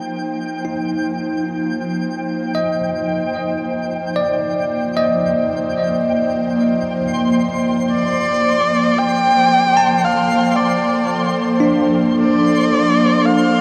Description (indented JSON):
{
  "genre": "ambient",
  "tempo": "56 BPM",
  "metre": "4/4",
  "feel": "straight",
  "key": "unclear",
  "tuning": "A4 = 445 Hz",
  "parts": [
    { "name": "ethereal airy pad", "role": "sustained chords", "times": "0.0-13.6 s", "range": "F3 to C5", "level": "-21 LUFS", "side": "equal", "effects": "ensemble chorus, built-in reverb" },
    { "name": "twinkling granular texture", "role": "texture", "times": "0.0-13.6 s", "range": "G5 to C6", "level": "-30 LUFS", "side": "equal", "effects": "built-in reverb" },
    { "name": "bell-like tine electric piano", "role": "arpeggios", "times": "0.6-13.6 s", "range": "D4 to A5", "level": "-23 LUFS", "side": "equal", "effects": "diffuse ambient delay" },
    { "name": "dark electric violin", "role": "melody", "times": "7.9-13.6 s", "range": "D5 to G5", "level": "-19 LUFS", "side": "equal", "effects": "diffuse ambient delay" }
  ],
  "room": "wet huge ambient reverb, RT60 8.7 s",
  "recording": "none",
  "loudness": "-17 LUFS",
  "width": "mono",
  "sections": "0.0-13.6 A section",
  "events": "fade-in on ambient pad 0.0-13.6; fade-in on tine electric piano 0.0-13.6; fade-in on synth texture 0.0-13.6",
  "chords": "0.0 Cm9; 6.8 Bbmaj9"
}